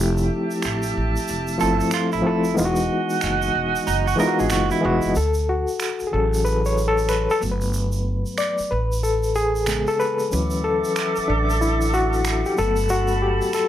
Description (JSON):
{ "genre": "R&B, neo-soul", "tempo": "93 BPM", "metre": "4/4", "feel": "swing 63% on 16ths", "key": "D major", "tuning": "A4 = 440 Hz", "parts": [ { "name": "overdriven reed electric piano", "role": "accompaniment", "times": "0.0-13.7 s", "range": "C#3 to D#5", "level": "-21 LUFS", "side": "left 2 dB", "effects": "fast tremolo" }, { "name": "small flute group", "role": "sustained chords", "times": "0.0-5.1, 10.3-13.7 s", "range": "F#4 to D6", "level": "-27 LUFS", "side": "right 4 dB", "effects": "none" }, { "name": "upright bass", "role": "bass", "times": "0.0-13.4 s", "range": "E1 to D2", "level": "-24 LUFS", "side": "right 1 dB", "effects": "none" }, { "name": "tube shaker and finger snaps", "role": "percussion", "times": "0.2-13.7 s", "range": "none", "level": "-31 LUFS", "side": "right 5 dB", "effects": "none" }, { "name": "electric guitar at the edge of break-up", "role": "second line", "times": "1.6-5.1 s", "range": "D#4 to Bb4", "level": "-25 LUFS", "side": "right 11 dB", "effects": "none" } ], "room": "light reverb", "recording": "none", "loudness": "-19 LUFS", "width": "side -11 dB against mid", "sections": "0.0-5.2 A section; 5.2-13.7 B section", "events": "reed electric piano solo 5.2-13.7", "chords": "0.0 Fmaj9; 2.6 Emaj9; 5.2 Dmaj9; 7.4 Gmaj9; 8.7 Amaj9; 10.3 Dmaj9; 12.6 Gmaj9" }